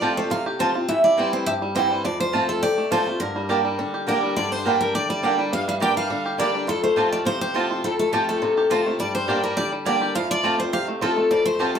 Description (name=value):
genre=bluegrass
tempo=207 BPM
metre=4/4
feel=straight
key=unclear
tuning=A4 = 440 Hz
part: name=picked steel-string acoustic guitar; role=melody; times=0.0-11.8 s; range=G4 to G5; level=-23 LUFS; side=left 1 dB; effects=none
part: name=picked swing-style acoustic guitar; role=accompaniment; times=0.0-11.8 s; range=F2 to G4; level=-27 LUFS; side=left 2 dB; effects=none
part: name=bluegrass banjo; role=arpeggios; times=0.0-11.8 s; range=D3 to G4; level=-28 LUFS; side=right 1 dB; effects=none
part: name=mandolin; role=stabs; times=0.0-11.7 s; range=Bb3 to A5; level=-24 LUFS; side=right 4 dB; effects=none
part: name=clear fiddle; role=second line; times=4.1-11.8 s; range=G4 to G5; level=-31 LUFS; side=left 2 dB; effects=none
room=wet small room reverb, RT60 0.5 s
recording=band playing live in one room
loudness=-20 LUFS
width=side -7 dB against mid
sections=0.0-11.8 A section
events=none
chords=0.0 F; 0.9 C; 2.0 F; 3.2 Gm; 6.7 F; 9.0 Gm; 10.2 F